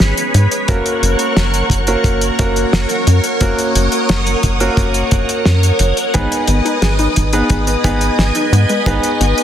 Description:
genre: synthwave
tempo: 88 BPM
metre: 4/4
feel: straight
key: unclear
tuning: A4 = 435 Hz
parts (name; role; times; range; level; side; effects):
- string machine, full ensemble; sustained chords; 0.0-9.4 s; G#4 to D#6; -18 LUFS; equal; phaser, ensemble chorus, sidechain pumping
- clear grand piano; stabs; 0.0-9.4 s; A#3 to B4; -20 LUFS; right 1 dB; tape echo
- tight sequencer bass; bass; 0.0-9.3 s; F#1 to G#2; -15 LUFS; equal; none
- cloth-damped thuddy drum kit; drums; 0.0-9.4 s; hi-hat, snare drum; -19 LUFS; left 1 dB; none
- kick drum; drums; 0.7-9.0 s; none; -18 LUFS; equal; none
- wide unison pluck; arpeggios; 6.1-9.4 s; G#3 to G#4; -22 LUFS; left 2 dB; tape echo
room: light reverb, studio ambience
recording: dense, heavily limited modern master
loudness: -12 LUFS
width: side -10 dB against mid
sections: 0.0-9.4 A section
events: none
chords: 0.0 G#m; 0.7 F#; 6.1 G#m

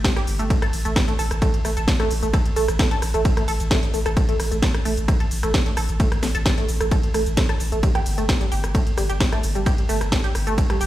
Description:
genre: driving peak-time techno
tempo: 131 BPM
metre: 4/4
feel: straight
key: unclear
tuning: A4 = 440 Hz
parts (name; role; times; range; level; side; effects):
- tight sequenced synth; riff; 0.0-10.8 s; G3 to A4; -26 LUFS; right 1 dB; chorus, phaser, sidechain pumping, digital delay
- saturated sub bass; bass; 0.0-10.9 s; G1 to A1; -25 LUFS; equal; overdrive, sidechain pumping, low-pass filter
- electronic kick drum; drums; 0.0-10.7 s; none; -21 LUFS; equal; none
- techno drum kit; drums; 0.0-10.9 s; hi-hat, ride cymbal, rim click, shaker, snare drum; -26 LUFS; equal; none
room: light reverb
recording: played on a big sound system in a bare room, large studio reverb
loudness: -18 LUFS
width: side -14 dB against mid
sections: 0.0-10.9 A section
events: none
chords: 0.0 Gsus2; 0.5 N.C.; 7.8 G5

